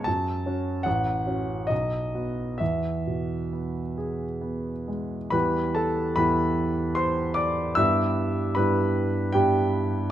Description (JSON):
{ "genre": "classical, romantic nocturne for solo piano", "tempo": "63-81 BPM", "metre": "3/4", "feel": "rubato", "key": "E major, E minor from 5.3 s", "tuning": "A4 = 439 Hz", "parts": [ { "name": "warm concert grand piano", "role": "solo", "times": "0.0-10.1 s", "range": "A1 to E6", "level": "-23 LUFS", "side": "equal", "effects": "none" } ], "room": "light reverb", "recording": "close, detailed microphones", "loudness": "-23 LUFS", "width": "side -12 dB against mid", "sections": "0.0-5.3 A section; 5.3-10.1 B section", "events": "none", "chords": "0.1 F#m; 0.9 F#m/A; 1.7 B; 2.6 E; 5.3 Em; 7.8 Em/G" }